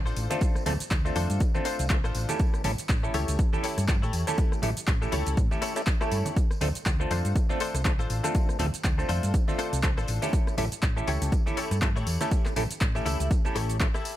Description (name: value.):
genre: filtered disco house.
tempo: 121 BPM.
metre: 4/4.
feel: swing 57% on 16ths.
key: unclear.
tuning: A4 = 441 Hz.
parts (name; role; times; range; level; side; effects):
hollow-body short-scale fingered electric bass; bass; 0.0-13.9 s; A1 to A2; -29 LUFS; equal; tube saturation, sidechain pumping.
direct-recorded clean electric guitar; riff; 0.1-14.2 s; D4 to E5; -34 LUFS; left 5 dB; ensemble chorus, sidechain pumping.
punchy analog drum machine; drums; 0.1-14.2 s; handclaps, hi-hat, rim click, shaker; -34 LUFS; equal; overdrive, sidechain pumping on hats, sidechain pumping on perc, sidechain pumping on cymbals.
tambourine and congas; percussion; 0.1-14.2 s; none; -39 LUFS; right 3 dB; sidechain pumping on perc.
clav; accompaniment; 0.3-13.9 s; A3 to A4; -32 LUFS; right 1 dB; phaser, vintage 12-bit sampler grit, sidechain pumping.
electronic kick drum; drums; 0.4-13.9 s; none; -26 LUFS; equal; overdrive.
room: little or no reverb.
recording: none.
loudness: -24 LUFS.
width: side -13 dB against mid.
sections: 0.0-14.2 A section.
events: none.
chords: 0.0 A7.